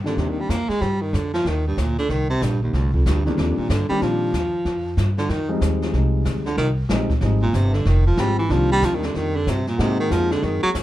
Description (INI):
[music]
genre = jazz, small-group swing and bop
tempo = 187 BPM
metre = 4/4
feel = swing 64% on 8ths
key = C minor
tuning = A4 = 440 Hz
[part]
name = warm upright piano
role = accompaniment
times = 0.0-0.5, 3.2-10.7 s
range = Eb3 to Gb4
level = -25 LUFS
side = left 2 dB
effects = none
[part]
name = upright bass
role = bass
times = 0.0-10.8 s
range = F1 to Bb2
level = -22 LUFS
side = equal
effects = none
[part]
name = warm baritone saxophone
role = second line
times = 0.1-10.7 s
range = D2 to Bb3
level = -22 LUFS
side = right 1 dB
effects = none
[part]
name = jazz brush drum kit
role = drums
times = 0.1-10.8 s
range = brushed snare drum, hi-hat, kick drum, snare drum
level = -29 LUFS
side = equal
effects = none
[sound]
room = light reverb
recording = dark, warm production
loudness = -18 LUFS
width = side -14 dB against mid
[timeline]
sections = 0.0-10.8 A section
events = baritone saxophone solo 0.0-10.8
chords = 0.0 Cm7; 4.7 Fm9; 8.5 Cm7; 9.8 Ab7